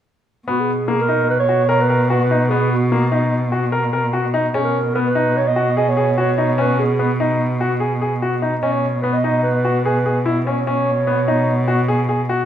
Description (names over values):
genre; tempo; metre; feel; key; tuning
contemporary instrumental, contemporary; 147 BPM; 5/4; straight; B major; A4 = 440 Hz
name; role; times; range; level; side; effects
dark clarinet; melody; 0.5-12.0 s; F#4 to D#5; -20 LUFS; right 4 dB; none
bright grand piano; arpeggios; 0.5-12.4 s; A#3 to A#4; -20 LUFS; left 2 dB; none
warm cello; bass; 0.5-12.5 s; B2; -20 LUFS; equal; none
room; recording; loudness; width
moderate recital hall reverb, RT60 1.4 s; minimal, uncompressed stereo recording; -15 LUFS; side -10 dB against mid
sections
0.5-12.5 A section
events
none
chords
0.5 Bmaj7; 4.6 B; 8.6 Emaj7(no3)/B (rootless); 10.7 C#9sus4/B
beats
| 0.48 0.89 1.29 1.70 2.11 | 2.52 2.92 3.33 3.74 4.14 | 4.55 4.96 5.37 5.77 6.18 | 6.59 7.00 7.40 7.81 8.22 | 8.62 9.03 9.44 9.85 10.25 | 10.66 11.07 11.47 11.88 12.29